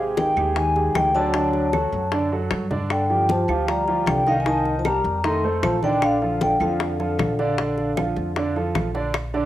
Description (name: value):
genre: Afro-Cuban jazz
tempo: 154 BPM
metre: 4/4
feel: straight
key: Bb major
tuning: A4 = 439 Hz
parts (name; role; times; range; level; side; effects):
- vibraphone with medium mallets; melody; 0.0-8.7 s; F5 to C6; -24 LUFS; left 1 dB; plate reverb, tape echo
- trombone with bucket mute; second line; 0.0-8.7 s; C3 to A3; -27 LUFS; left 2 dB; cassette tape
- warm baby grand piano; accompaniment; 0.0-9.5 s; D3 to Eb5; -25 LUFS; right 4 dB; cassette tape
- upright bass; bass; 0.0-9.5 s; Ab1 to G2; -28 LUFS; equal; none
- bongos; percussion; 0.2-9.3 s; none; -29 LUFS; left 6 dB; none
- congas; percussion; 0.2-9.5 s; none; -30 LUFS; left 2 dB; none
- claves; percussion; 0.4-9.3 s; none; -36 LUFS; right 6 dB; none
room: wet studio reverb, RT60 0.7 s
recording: home recording on cassette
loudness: -19 LUFS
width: side -13 dB against mid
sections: 0.0-9.1 A section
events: drum fill 1.7-2.9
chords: 0.0 Abmaj7(no3); 1.3 D; 2.9 Gm9; 4.5 Cm7; 5.2 F6; 6.0 Bbmaj7